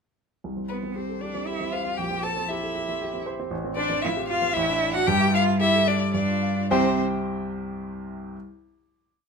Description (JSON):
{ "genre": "quick classical-period movement for piano trio", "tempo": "108-118 BPM", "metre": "3/4", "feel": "straight", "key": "C major", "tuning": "A4 = 440 Hz", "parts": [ { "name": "warm baby grand piano", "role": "accompaniment", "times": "0.4-8.4 s", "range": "A1 to G5", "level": "-26 LUFS", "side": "equal", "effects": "none" }, { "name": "rich violin", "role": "melody", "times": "0.7-7.0 s", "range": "B4 to A5", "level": "-26 LUFS", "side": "left 5 dB", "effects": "none" }, { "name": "rich cello", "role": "second line", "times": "0.7-7.0 s", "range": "B3 to A4", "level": "-29 LUFS", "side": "right 6 dB", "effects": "none" } ], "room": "wet stone room reverb, RT60 0.9 s", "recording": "none", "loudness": "-22 LUFS", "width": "side -5 dB against mid", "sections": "0.4-6.7 A section; 6.7-8.3 final chord", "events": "none", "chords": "0.4 C5; 2.0 C7/Bb; 3.5 F/A; 4.6 D5/A; 5.1 Fmaj13/G; 6.2 G5; 6.7 C", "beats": "| 0.44 0.96 1.48 | 1.99 2.50 3.01 | 3.52 4.04 4.55 | 5.08 5.62 6.15 | 6.70 7.25 7.79" }